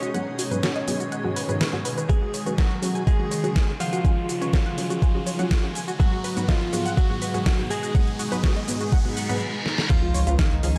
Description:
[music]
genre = progressive house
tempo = 123 BPM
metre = 4/4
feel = straight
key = G# dorian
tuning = A4 = 440 Hz
[part]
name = direct-recorded clean electric guitar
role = melody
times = 0.0-10.8 s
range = D#3 to C#5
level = -32 LUFS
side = equal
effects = digital delay
[part]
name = airy dreamy lead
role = second line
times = 0.0-10.8 s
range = D#4 to C#5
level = -39 LUFS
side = equal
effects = chorus, sidechain pumping, digital delay
[part]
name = shimmering ambient pad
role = sustained chords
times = 0.0-10.8 s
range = B2 to C#6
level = -36 LUFS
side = equal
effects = chorus, built-in reverb, sidechain pumping
[part]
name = tight sequenced synth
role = arpeggios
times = 0.0-10.8 s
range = E#4 to E#6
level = -35 LUFS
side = equal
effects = chorus, sidechain pumping, digital delay
[part]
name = pop drum kit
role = drums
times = 0.0-10.8 s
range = crash cymbal, hi-hat, shaker, snare drum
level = -32 LUFS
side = equal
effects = overdrive, sidechain pumping on hats, sidechain pumping on perc, sidechain pumping on cymbals
[part]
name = riser, reverse cymbal and impact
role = sound effects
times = 0.1-10.8 s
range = none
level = -38 LUFS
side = equal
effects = none
[part]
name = unison pluck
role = stabs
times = 0.1-10.8 s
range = G#2 to B4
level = -34 LUFS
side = equal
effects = sidechain pumping, digital delay
[part]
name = electronic kick drum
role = drums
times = 2.1-10.5 s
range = none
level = -23 LUFS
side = equal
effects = overdrive
[part]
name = round analog bass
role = bass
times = 10.0-10.8 s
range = C#2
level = -25 LUFS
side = equal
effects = sidechain pumping
[sound]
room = moderate digital room reverb, RT60 1.1 s, digital ambience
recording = dark, warm production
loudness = -24 LUFS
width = mono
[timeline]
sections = 0.0-9.9 A section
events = build-up 0.0-9.9; filter sweep on synth pluck 0.0-9.9; riser 0.1-9.4; reverse cymbal 8.9-9.9; break 9.4-9.9; drum fill 9.7; impact 9.9-10.8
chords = 0.0 G#m7; 2.1 F#sus2; 6.0 G#m7; 9.9 C#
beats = | 0.14 0.63 1.12 1.61 | 2.10 2.58 3.07 3.56 | 4.05 4.54 5.02 5.51 | 6.00 6.49 6.97 7.46 | 7.95 8.44 8.93 9.41 | 9.90 10.39

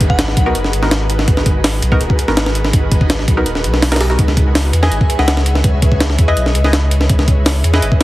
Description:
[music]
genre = drum and bass, jungle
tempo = 165 BPM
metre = 4/4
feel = straight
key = G# minor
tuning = A4 = 440 Hz
[part]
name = saturated sub bass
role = bass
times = 0.0-7.9 s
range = D#1 to E2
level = -16 LUFS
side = equal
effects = none
[part]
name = breakbeat sampler-style drum kit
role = drums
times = 0.0-8.0 s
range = hi-hat, kick drum, snare drum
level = -14 LUFS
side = equal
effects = none
[part]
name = downlifter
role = sound effects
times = 0.0-1.3 s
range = none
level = barely audible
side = none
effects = none
[part]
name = glassy synth bell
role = melody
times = 0.1-0.5, 4.8-6.8 s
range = D#5 to G#5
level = -24 LUFS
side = left 2 dB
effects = chorus, dub echo
[part]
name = filtered dub chord stab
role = stabs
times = 0.5-7.8 s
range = B3 to D#5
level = -22 LUFS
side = equal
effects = chorus, dub echo
[sound]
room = light reverb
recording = heavily compressed radio sound, multiband compression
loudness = -11 LUFS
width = side -17 dB against mid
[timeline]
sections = 0.0-8.0 A section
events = none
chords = 0.0 G#m7; 4.2 C#m7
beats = 0.19 0.55 0.91 | 1.28 1.64 2.00 2.37 | 2.73 3.10 3.46 3.82 | 4.19 4.55 4.91 5.28 | 5.64 6.00 6.37 6.73 | 7.10 7.46 7.82

